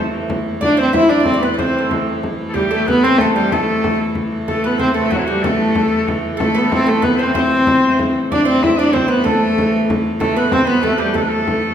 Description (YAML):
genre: medieval dance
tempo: 125 BPM (dotted quarters)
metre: 6/8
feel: straight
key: A minor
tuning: A4 = 440 Hz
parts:
  - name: clear hurdy-gurdy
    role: drone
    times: 0.0-11.7 s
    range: A2 to E3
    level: -24 LUFS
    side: right 1 dB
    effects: none
  - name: frame drum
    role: percussion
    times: 0.1-11.7 s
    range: none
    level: -23 LUFS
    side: left 2 dB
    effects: none
  - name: dark viola da gamba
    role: melody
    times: 0.6-11.7 s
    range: F#3 to E4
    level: -16 LUFS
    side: equal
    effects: none
  - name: bright shawm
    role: second line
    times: 0.6-11.7 s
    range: E4 to E5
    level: -22 LUFS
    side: left 2 dB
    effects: none
  - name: oud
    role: second line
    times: 0.6-11.7 s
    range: F#4 to E5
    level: -22 LUFS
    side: right 3 dB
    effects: none
room: wet recital hall reverb, RT60 1.7 s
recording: recorded in a church or concert hall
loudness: -13 LUFS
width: side -9 dB against mid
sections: 0.0-4.5 A section; 4.5-11.7 B section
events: none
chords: none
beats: 0.13 | 0.61 1.10 | 1.58 2.06 | 2.55 3.03 | 3.51 3.99 | 4.47 4.95 | 5.43 5.91 | 6.39 6.87 | 7.35 7.83 | 8.30 8.78 | 9.26 9.73 | 10.21 10.69 | 11.16 11.63